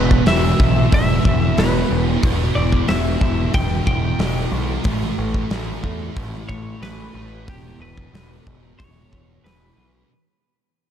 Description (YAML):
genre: rock, shoegaze and dream pop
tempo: 92 BPM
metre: 4/4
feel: straight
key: E dorian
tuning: A4 = 440 Hz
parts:
  - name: twelve-string electric guitar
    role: melody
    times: 0.0-9.9 s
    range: G4 to G5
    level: -26 LUFS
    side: left 1 dB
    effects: tape echo
  - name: thick fuzz guitar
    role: riff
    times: 0.0-10.1 s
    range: E2 to A3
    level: -22 LUFS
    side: equal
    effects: distortion, ensemble chorus
  - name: growling picked electric bass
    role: bass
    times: 0.0-10.0 s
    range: E1 to E2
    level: -23 LUFS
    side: equal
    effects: overdrive
  - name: big rock drum kit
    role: drums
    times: 0.1-9.6 s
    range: hi-hat, kick drum, snare drum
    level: -20 LUFS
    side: equal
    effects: none
room: studio ambience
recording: dark, warm production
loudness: -16 LUFS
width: side -9 dB against mid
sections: 0.0-10.1 A section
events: fade-out 0.0-10.1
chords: 0.0 E5; 4.8 Asus2; 7.5 E5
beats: 0.26 0.92 1.57 | 2.23 2.88 3.54 4.19 | 4.85 5.50 6.16 6.82 | 7.47 8.13 8.79 9.45